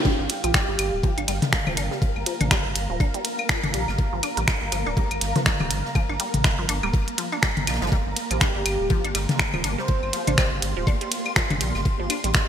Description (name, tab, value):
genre	minimal techno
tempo	122 BPM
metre	4/4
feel	swing 58% on 16ths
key	G minor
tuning	A4 = 440 Hz
part	granular cloud pad	texture	0.0-12.5 s	F5 to C6	-33 LUFS	equal	built-in reverb, ensemble chorus, sidechain pumping
part	resonant blip pluck	riff	0.1-12.3 s	F3 to D4	-32 LUFS	equal	phaser, sidechain pumping, digital delay
part	big rock drum kit	drums	0.1-12.5 s	ride cymbal, snare drum	-36 LUFS	equal	sidechain pumping on cymbals, high-pass filter on cymbals, high-pass filter on snare, high-pass filter on room, gated reverb
part	electronic kick drum	drums	0.1-12.5 s	none	-22 LUFS	equal	none
part	flickering grainy texture	texture	0.8-12.5 s	Bb3 to Bb4	-35 LUFS	right 1 dB	built-in reverb, wide subtle chorus, sidechain pumping
part	saturated sub bass	bass	0.2-12.3 s	D1 to Bb1	-28 LUFS	equal	sidechain pumping
part	minimal click drum kit	drums	0.3-12.5 s	finger snaps, hi-hat, ride cymbal	-25 LUFS	right 1 dB	gated reverb
part	breathy flute-like synth lead	melody	0.4-1.1, 8.3-10.5 s	G4 to C5	-30 LUFS	right 1 dB	ensemble chorus, digital delay
part	electronic claves and toms	percussion	0.4-12.2 s	none	-29 LUFS	left 3 dB	gated reverb, digital delay
room	moderate lush hall reverb, RT60 2.0 s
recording	bright 1980s-style digital production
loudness	-21 LUFS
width	side -9 dB against mid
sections	0.0-12.5 A section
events	none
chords	0.0 Gm7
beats	| 0.05 0.54 1.03 1.53 | 2.02 2.51 3.00 3.49 | 3.98 4.48 4.97 5.46 | 5.95 6.44 6.94 7.43 | 7.92 8.41 8.90 9.39 | 9.89 10.38 10.87 11.36 | 11.85 12.35